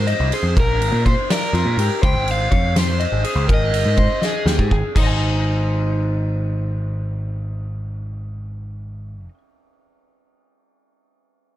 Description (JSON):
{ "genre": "math rock and midwest emo", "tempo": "82 BPM (dotted quarters)", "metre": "6/8", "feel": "straight", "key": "Ab major", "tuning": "A4 = 440 Hz", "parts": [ { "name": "overdriven semi-hollow guitar", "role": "melody", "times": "0.0-9.3 s", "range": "Eb4 to G5", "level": "-25 LUFS", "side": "right 1 dB", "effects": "slapback echo" }, { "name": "electric guitar through a small old amp", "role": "arpeggios", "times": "0.0-9.4 s", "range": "F4 to Ab5", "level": "-26 LUFS", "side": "left 5 dB", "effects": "none" }, { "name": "growling picked electric bass", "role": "bass", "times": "0.0-9.3 s", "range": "G1 to Bb2", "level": "-21 LUFS", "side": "equal", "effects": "overdrive" }, { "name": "loose indie drum kit", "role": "drums", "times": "0.1-5.1 s", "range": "crash cymbal, kick drum, ride cymbal, snare drum", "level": "-20 LUFS", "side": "equal", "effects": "none" } ], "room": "little or no reverb", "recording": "none", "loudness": "-17 LUFS", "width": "side -14 dB against mid", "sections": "0.0-5.0 A section; 5.0-7.9 B section", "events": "drum fill 4.2-5.0", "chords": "0.0 Fm7; 0.6 Bb7; 2.0 Dbmaj9; 3.5 Abmaj7; 5.0 Ab", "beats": "| 0.56 1.30 | 2.03 2.76 | 3.49 4.23 | 4.96 5.69 | 6.43 7.16" }